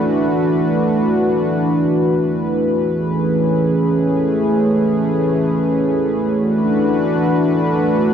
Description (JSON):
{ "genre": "hip hop", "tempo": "free time", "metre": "none", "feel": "none", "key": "unclear", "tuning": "A4 = 437 Hz", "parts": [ { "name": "warm analog pad", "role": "solo", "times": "0.0-8.1 s", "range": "E3 to B4", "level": "-14 LUFS", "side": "equal", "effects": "chorus, tape echo" } ], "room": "light reverb, digital ambience", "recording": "dark, warm production", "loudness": "-14 LUFS", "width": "side -8 dB against mid", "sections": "0.0-8.1 A section", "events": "none", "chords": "0.0 D69; 2.9 Amaj9; 6.4 D69" }